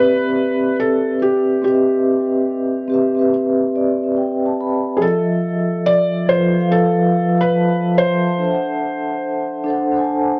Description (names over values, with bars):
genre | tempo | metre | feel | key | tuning
hip hop | 71 BPM | 4/4 | swing 65% on 16ths | C major | A4 = 441 Hz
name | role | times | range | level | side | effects
felt-muted upright piano | melody | 0.0-10.4 s | G4 to D5 | -22 LUFS | equal | low-pass filter
vibraphone with soft mallets | accompaniment | 0.0-10.4 s | F3 to C6 | -19 LUFS | equal | low-pass filter
room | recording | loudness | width
wet studio ambience, RT60 0.5 s | none | -18 LUFS | mono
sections
0.0-10.4 A section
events
none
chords
0.0 Cmaj7; 5.0 Fmaj7; 8.4 D7